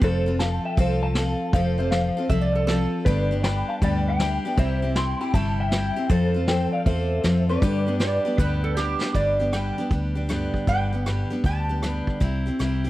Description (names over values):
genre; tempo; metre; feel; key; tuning
honky-tonk and classic country; 158 BPM; 4/4; swing 65% on 8ths; G mixolydian; A4 = 441 Hz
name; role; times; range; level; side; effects
electric guitar through a small old amp; melody; 0.0-8.7 s; A4 to C6; -27 LUFS; left 1 dB; ensemble chorus, tape echo
picked steel-string acoustic guitar; accompaniment; 0.0-12.9 s; G2 to A4; -26 LUFS; left 1 dB; none
vintage muted fingered electric bass; bass; 0.0-12.9 s; F1 to G2; -25 LUFS; equal; none
vintage brush drum kit; drums; 0.0-12.9 s; hi-hat, kick drum, rim click, snare drum; -24 LUFS; equal; none
lap resonator guitar; second line; 2.3-3.0, 8.0-12.0 s; G4 to A5; -27 LUFS; right 3 dB; none
room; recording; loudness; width
little or no reverb; dry, close 1970s-style studio recording; -21 LUFS; side -16 dB against mid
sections
0.0-9.1 A section; 9.1-12.9 B section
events
drum fill 8.8-9.1; resonator guitar played with a steel bar solo 9.1-12.9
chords
0.0 F; 3.1 G; 4.6 C; 6.1 F; 7.6 G; 12.2 C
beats
| 0.03 0.41 0.79 1.17 | 1.54 1.92 2.30 2.68 | 3.06 3.44 3.82 4.20 | 4.58 4.96 5.34 5.72 | 6.10 6.48 6.86 7.24 | 7.62 8.00 8.38 8.77 | 9.15 9.53 9.91 10.29 | 10.68 11.06 11.44 11.83 | 12.21 12.59